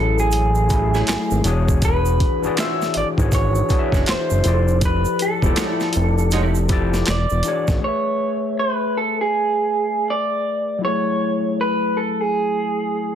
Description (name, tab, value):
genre	R&B, neo-soul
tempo	80 BPM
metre	4/4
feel	swing 63% on 16ths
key	A major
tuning	A4 = 440 Hz
part	electric guitar through a small old amp	melody	0.0-13.2 s	G#4 to E5	-21 LUFS	right 2 dB	slapback echo
part	overdriven tine electric piano	accompaniment	0.0-13.2 s	E3 to E5	-24 LUFS	left 5 dB	wide subtle chorus
part	fat analog bass	bass	0.0-7.8 s	E1 to A1	-19 LUFS	equal	none
part	egg shaker and finger snaps	percussion	0.2-7.8 s	none	-34 LUFS	right 9 dB	none
part	boom bap sampler-style drum kit	drums	0.3-7.8 s	handclaps, hi-hat, kick drum, snare drum	-21 LUFS	equal	none
part	archtop guitar, miked and amplified	second line	0.9-6.6 s	A3 to D5	-28 LUFS	right 5 dB	none
room	light reverb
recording	dense, heavily limited modern master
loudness	-17 LUFS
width	side -9 dB against mid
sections	0.0-7.8 A section; 7.8-13.2 B section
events	none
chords	0.0 F#m9; 1.4 E13; 4.4 Fmaj13; 7.1 E13; 7.8 Amaj9; 10.8 F#m9